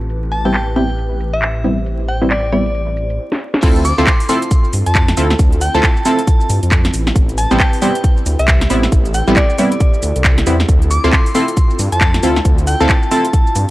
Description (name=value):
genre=UK garage, two-step garage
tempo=136 BPM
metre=4/4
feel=swing 60% on 16ths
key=D minor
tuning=A4 = 440 Hz
part: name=airy breathy pad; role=sustained chords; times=0.0-13.7 s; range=C4 to C5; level=-27 LUFS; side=right 1 dB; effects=chorus, sidechain pumping
part: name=dark detuned saw bass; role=bass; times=0.0-13.7 s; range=A1 to G2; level=-17 LUFS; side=equal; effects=tube saturation
part: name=house drum kit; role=drums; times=0.0-13.7 s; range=crash cymbal, handclaps, hi-hat, shaker, snare drum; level=-19 LUFS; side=equal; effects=low-pass filter on perc, low-pass filter on hats, low-pass filter on snare, low-pass filter on cymbals, low-pass filter on room
part: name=glassy synth bell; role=melody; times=0.3-13.6 s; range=D5 to D6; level=-21 LUFS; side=equal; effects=chorus, tremolo, analog delay
part: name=punchy chord stab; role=stabs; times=0.5-13.3 s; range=G3 to A4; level=-17 LUFS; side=equal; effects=chorus
part: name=electronic kick drum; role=drums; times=3.6-13.4 s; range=none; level=-13 LUFS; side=equal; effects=none
room=little or no reverb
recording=dry, gritty hardware recording, vinyl crackle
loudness=-12 LUFS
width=side -17 dB against mid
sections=0.0-3.6 A section; 3.6-13.7 B section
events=drum fill 3.3-3.6; drop 3.6-13.7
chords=0.0 Am9; 3.6 Dm9; 6.9 Am9; 10.7 Dm9